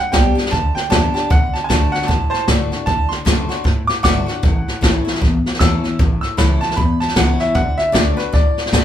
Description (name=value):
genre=rockabilly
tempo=154 BPM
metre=4/4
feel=swing 60% on 8ths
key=D major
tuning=A4 = 440 Hz
part: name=bright upright piano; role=melody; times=0.0-8.8 s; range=B4 to E6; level=-21 LUFS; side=right 1 dB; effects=none
part: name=picked steel-string acoustic guitar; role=accompaniment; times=0.0-8.8 s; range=E2 to G4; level=-22 LUFS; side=left 4 dB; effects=none
part: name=upright bass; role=bass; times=0.1-8.8 s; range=G1 to A2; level=-20 LUFS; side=equal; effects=none
part: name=jazz brush drum kit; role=drums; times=0.1-8.8 s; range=hi-hat, kick drum, snare drum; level=-17 LUFS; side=equal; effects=none
room=moderate studio reverb, RT60 0.6 s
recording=band playing live in one room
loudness=-14 LUFS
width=side -10 dB against mid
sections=0.0-8.8 A section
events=upright piano solo 0.0-8.8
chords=0.0 G; 1.3 D; 4.4 A; 7.6 D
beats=0.13 0.52 0.91 | 1.30 1.70 2.09 2.48 | 2.87 3.26 3.65 4.04 | 4.43 4.82 5.21 5.60 | 5.99 6.38 6.77 7.16 | 7.55 7.94 8.33 8.72